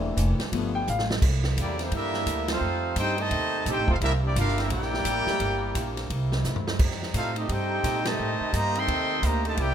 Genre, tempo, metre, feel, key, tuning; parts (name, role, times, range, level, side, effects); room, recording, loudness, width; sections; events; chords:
jazz, big band swing; 172 BPM; 4/4; swing 62% on 8ths; A4 = 439 Hz
clear grand piano; accompaniment; 0.0-1.0 s; E3 to G5; -29 LUFS; left 5 dB
muted trombone section; sustained chords; 0.0-9.7 s; C3 to A4; -37 LUFS; left 2 dB
upright bass; bass; 0.0-9.7 s; E1 to Bb2; -28 LUFS; right 1 dB
swinging big-band drum kit; drums; 0.2-9.7 s; crash cymbal, hi-hat, kick drum, ride cymbal, snare drum, toms; -30 LUFS; equal
warm trumpet section; melody; 1.6-9.7 s; Bb3 to C6; -28 LUFS; equal
bright trombone section; second line; 1.6-9.7 s; C3 to G4; -31 LUFS; right 2 dB
light reverb; minimal, uncompressed stereo recording; -23 LUFS; side -9 dB against mid
0.0-1.2 A section; 1.2-9.7 B section
grand piano solo 0.0-1.2; drum fill 0.9-1.2, 6.4-6.8; band accent 2.4, 8.0
0.0 C13; 0.5 G9; 1.2 C9; 2.6 F9; 4.0 C13; 5.4 Gm7; 6.1 C9; 6.8 F13